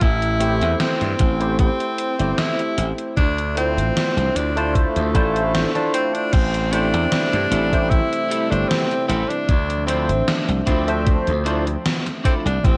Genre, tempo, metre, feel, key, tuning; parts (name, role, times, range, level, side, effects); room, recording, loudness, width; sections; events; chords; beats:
vaporwave; 76 BPM; 4/4; swing 53% on 16ths; A minor; A4 = 440 Hz
clear tenor saxophone; melody; 0.0-12.8 s; A3 to E4; -26 LUFS; equal; tape echo
slap bass; bass; 0.0-12.8 s; G1 to G2; -24 LUFS; equal; tube saturation
electronic kick drum; drums; 0.0-12.8 s; -20 LUFS; equal; vintage 12-bit sampler grit
gated 80s digital drum machine; drums; 0.0-12.8 s; crash cymbal, hi-hat, snare drum; -28 LUFS; equal; gated reverb, gated reverb snare, vintage 12-bit sampler grit
barky tine electric piano; accompaniment; 0.4-11.6 s; F3 to E5; -26 LUFS; equal; analog chorus
warbly tape-like pad; sustained chords; 6.3-12.8 s; C3 to E5; -35 LUFS; equal
electric guitar at the edge of break-up; riff; 6.7-12.5 s; C4 to C5; -33 LUFS; equal; analog chorus, analog delay
light reverb, digital ambience; -20 LUFS; mono
0.0-6.3 A section; 6.3-12.8 B section
0.0 Am7; 3.2 Dm9; 6.3 Am7; 9.5 Dm9
| 0.01 0.80 1.59 2.38 | 3.17 3.96 4.75 5.54 | 6.33 7.12 7.91 8.70 | 9.49 10.28 11.07 11.86 | 12.64